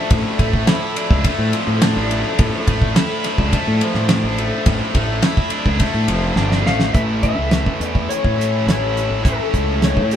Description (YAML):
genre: psychedelic rock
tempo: 105 BPM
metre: 4/4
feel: straight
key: unclear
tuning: A4 = 440 Hz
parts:
  - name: clear symphonic string section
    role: sustained chords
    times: 0.0-10.2 s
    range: F3 to E5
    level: -29 LUFS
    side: equal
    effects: none
  - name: overdriven electric guitar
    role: riff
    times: 0.0-10.2 s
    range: A2 to E4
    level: -22 LUFS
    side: equal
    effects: none
  - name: fuzz fingered electric bass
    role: bass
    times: 0.1-10.2 s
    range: F1 to A2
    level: -20 LUFS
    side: equal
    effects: overdrive
  - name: damped 70s drum kit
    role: drums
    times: 0.1-10.2 s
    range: hi-hat, kick drum, ride cymbal, snare drum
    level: -18 LUFS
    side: equal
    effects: none
  - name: clean lap steel guitar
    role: melody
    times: 6.7-10.2 s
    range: A4 to F5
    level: -22 LUFS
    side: left 5 dB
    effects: none
room: moderate small room reverb, RT60 0.5 s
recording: band playing live in one room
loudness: -15 LUFS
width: side -10 dB against mid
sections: 0.0-6.9 A section; 6.9-10.2 B section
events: drum fill 6.4-6.9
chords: 0.0 Dmadd9/A; 6.9 A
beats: | 0.10 0.67 1.24 1.81 | 2.38 2.95 3.52 4.09 | 4.66 5.23 5.80 6.37 | 6.95 7.52 8.09 8.67 | 9.24 9.81